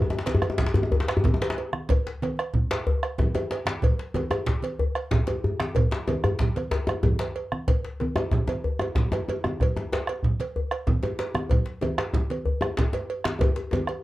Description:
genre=west african traditional, West African drum ensemble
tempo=125 BPM (dotted quarters)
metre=12/8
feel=straight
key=none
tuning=none
part: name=djembe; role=percussion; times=0.0-13.9 s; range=none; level=-27 LUFS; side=left 1 dB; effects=none
part: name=djembe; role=percussion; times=0.1-13.9 s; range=none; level=-29 LUFS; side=left 2 dB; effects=none
part: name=congas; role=percussion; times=0.3-13.9 s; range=none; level=-29 LUFS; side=right 2 dB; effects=none
part: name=cowbell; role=percussion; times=0.3-14.0 s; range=none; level=-33 LUFS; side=right 4 dB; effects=none
part: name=bombo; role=percussion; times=0.4-14.0 s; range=none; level=-27 LUFS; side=equal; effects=none
room=wet small room reverb, RT60 0.5 s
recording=worn, warbling old tape, cassette tape, warbly pitch drift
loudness=-23 LUFS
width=side -17 dB against mid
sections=0.0-14.0 A section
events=drum fill 13.4-14.0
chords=none

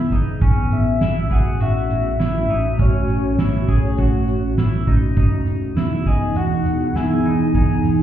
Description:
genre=dream pop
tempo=101 BPM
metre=4/4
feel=straight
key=unclear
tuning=A4 = 440 Hz
part: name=ethereal airy pad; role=sustained chords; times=0.0-8.0 s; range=D#3 to G#4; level=-22 LUFS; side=right 1 dB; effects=ensemble chorus, built-in reverb
part: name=clean electric guitar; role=arpeggios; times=0.0-8.0 s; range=C#4 to G#4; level=-28 LUFS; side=left 1 dB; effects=wide subtle chorus, ping-pong delay
part: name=vintage muted fingered electric bass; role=bass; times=0.0-8.0 s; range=E1 to A1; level=-21 LUFS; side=right 1 dB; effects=none
part: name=soft-mallet drum kit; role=drums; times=0.1-8.0 s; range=hi-hat, kick drum, snare drum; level=-20 LUFS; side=right 1 dB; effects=none
part: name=soft octave-layered synth lead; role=melody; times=0.7-8.0 s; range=C#5 to G#5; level=-26 LUFS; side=left 3 dB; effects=chorus, ping-pong delay
room=wet studio reverb, RT60 0.5 s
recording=heard muffled through a wall, club reverb, EQ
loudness=-16 LUFS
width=side -11 dB against mid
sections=0.0-8.0 A section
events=none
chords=0.4 A6; 5.2 Emaj7

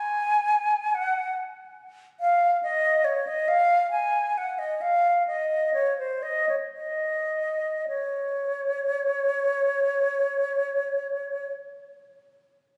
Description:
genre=classical, baroque-style fantasia for unaccompanied flute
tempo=51-73 BPM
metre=3/4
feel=rubato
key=Db major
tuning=A4 = 440 Hz
part: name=mellow silver concert flute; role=solo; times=0.0-11.5 s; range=C5 to Ab5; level=-26 LUFS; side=equal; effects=none
room=moderate concert hall reverb, RT60 2.1 s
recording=recorded on a phone in the room, club ambience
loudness=-25 LUFS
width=mono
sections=0.0-7.9 A section; 7.9-11.0 B section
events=slowing down 0.9-7.9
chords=none

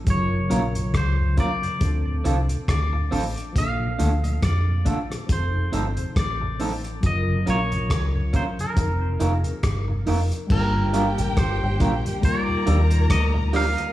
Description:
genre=lovers rock reggae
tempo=69 BPM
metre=4/4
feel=swing 57% on 16ths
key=unclear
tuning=A4 = 441 Hz
part: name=tine electric piano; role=accompaniment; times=0.0-13.9 s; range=Db3 to Bb4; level=-30 LUFS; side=left 2 dB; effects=overdrive, analog chorus, tape echo
part: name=deep dub fingered electric bass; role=bass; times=0.0-13.7 s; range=F1 to F2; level=-23 LUFS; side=equal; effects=none
part: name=twangy electric guitar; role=melody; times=0.1-13.9 s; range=Bb4 to F5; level=-29 LUFS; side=equal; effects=spring reverb, tape echo
part: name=cloth-damped thuddy drum kit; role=drums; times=0.1-13.9 s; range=crash cymbal, hi-hat, kick drum, rim click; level=-25 LUFS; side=equal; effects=gated reverb
part: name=mellow tonewheel organ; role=accompaniment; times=0.3-13.6 s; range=D2 to F4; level=-31 LUFS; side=left 1 dB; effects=chorus vibrato, stopped rotary speaker
part: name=electric guitar through a small old amp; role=stabs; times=0.5-13.6 s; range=C4 to D5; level=-29 LUFS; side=right 3 dB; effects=none
part: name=warm studio violin section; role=second line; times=10.5-13.9 s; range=G4 to Bb5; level=-30 LUFS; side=equal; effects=tape echo
room=studio reverb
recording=small room reverb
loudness=-20 LUFS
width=side -14 dB against mid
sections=0.0-10.5 A section; 10.5-13.9 B section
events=none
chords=0.1 Gbmaj7; 1.8 Dm7; 3.6 Bbmaj7; 5.3 F7; 7.0 Gbmaj7; 8.8 F7sus4; 10.5 Gm7; 12.2 Ebmaj9

